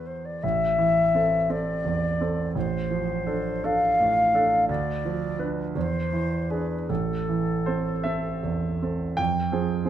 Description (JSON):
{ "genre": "classical, romantic duo for flute and grand piano", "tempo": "50-61 BPM (dotted quarters)", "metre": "6/8", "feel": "rubato", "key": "A minor", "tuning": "A4 = 444 Hz", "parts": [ { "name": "mellow concert flute", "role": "melody", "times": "0.0-8.8 s", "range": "A4 to F5", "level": "-25 LUFS", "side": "left 2 dB", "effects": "none" }, { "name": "clear concert grand piano", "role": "accompaniment", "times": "0.0-9.9 s", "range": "A1 to G5", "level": "-26 LUFS", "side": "right 3 dB", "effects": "none" } ], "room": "moderate recital hall reverb, RT60 1.5 s", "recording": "close, detailed microphones", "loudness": "-22 LUFS", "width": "side -10 dB against mid", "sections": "0.0-9.2 A section", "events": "none", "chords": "0.4 Am; 2.5 Dm7/A; 4.7 Bdim/D; 5.8 E7; 6.9 Am; 9.2 Fm" }